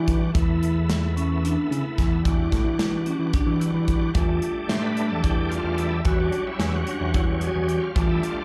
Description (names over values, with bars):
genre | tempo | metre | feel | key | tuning
progressive instrumental, band music in an uneven meter | 221 BPM (eighths) | 7/8 | straight | E dorian | A4 = 441 Hz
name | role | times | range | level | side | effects
bright tonewheel organ | accompaniment | 0.0-8.4 s | F#3 to C5 | -33 LUFS | equal | overdrive, chorus vibrato, fast rotary speaker
vibraphone with medium mallets | arpeggios | 0.0-8.3 s | C#4 to F#4 | -31 LUFS | equal | slapback echo
fat analog bass | bass | 0.0-8.2 s | E2 to E3 | -26 LUFS | equal | none
modern studio drum kit | drums | 0.1-8.4 s | hi-hat, kick drum, snare drum | -27 LUFS | equal | none
room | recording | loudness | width
light reverb | live gig heard through the venue's PA, club reverb | -23 LUFS | mono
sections
0.0-4.2 A section; 4.2-8.4 B section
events
tonewheel organ solo 4.2-8.4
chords
0.4 Esus4; 2.3 Em7; 4.2 F69/E; 6.1 Em69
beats
0.08 | 0.35 0.62 0.90 1.17 1.44 1.71 1.98 | 2.25 2.52 2.80 3.07 3.34 3.61 3.88 | 4.16 4.43 4.70 4.97 5.24 5.51 5.79 | 6.06 6.33 6.60 6.87 7.14 7.42 7.69 | 7.96 8.23